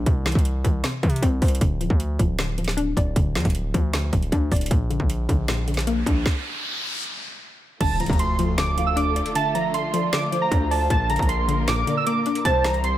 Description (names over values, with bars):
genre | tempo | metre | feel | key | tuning
hip hop, trap | 155 BPM | 4/4 | half-time | D minor | A4 = 440 Hz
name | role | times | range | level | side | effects
hollow square pluck | accompaniment | 0.0-13.0 s | Bb2 to D5 | -27 LUFS | left 4 dB | chorus
distorted 808-style bass | bass | 0.0-13.0 s | D1 to C3 | -24 LUFS | equal | distortion
trap drum kit | drums | 0.1-12.9 s | crash cymbal, hi-hat, kick drum, snare drum | -23 LUFS | equal | none
riser and impact | sound effects | 5.4-9.4 s | none | -32 LUFS | equal | none
warbly lo-fi synth keys | melody | 7.8-13.0 s | A5 to E6 | -24 LUFS | right 2 dB | chorus
dark symphonic string section | sustained chords | 7.8-13.0 s | C3 to C5 | -31 LUFS | equal | none
hollow clarinet-like synth lead | second line | 8.8-13.0 s | C5 to F5 | -28 LUFS | right 4 dB | chorus, ping-pong delay
room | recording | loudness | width
little or no reverb | none | -20 LUFS | side -13 dB against mid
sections
0.0-7.8 A section; 7.8-13.0 B section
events
riser 5.4-7.8; stop 6.3-7.8; impact 7.8-9.4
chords
0.1 C; 1.6 Dm; 4.7 Bb; 6.3 N.C.; 7.8 Dm; 10.9 Bb; 12.5 C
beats
| 0.06 0.45 0.84 1.23 | 1.61 2.00 2.39 2.77 | 3.16 3.55 3.94 4.32 | 4.71 5.10 5.48 5.87 | 6.26 6.64 7.03 7.42 | 7.81 8.19 8.58 8.97 | 9.35 9.74 10.13 10.52 | 10.90 11.29 11.68 12.06 | 12.45 12.84